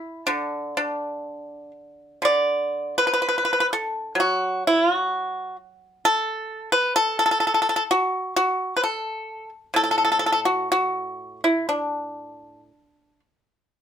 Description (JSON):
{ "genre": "chinese traditional", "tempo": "56-66 BPM", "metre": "4/4", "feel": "rubato", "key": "D gong mode", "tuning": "A4 = 441 Hz", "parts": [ { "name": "pipa", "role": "solo", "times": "0.0-13.2 s", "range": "A2 to D5", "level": "-21 LUFS", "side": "equal", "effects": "none" } ], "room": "light reverb", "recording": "none", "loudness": "-20 LUFS", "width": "side -8 dB against mid", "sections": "0.0-13.7 A section", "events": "none", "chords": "none" }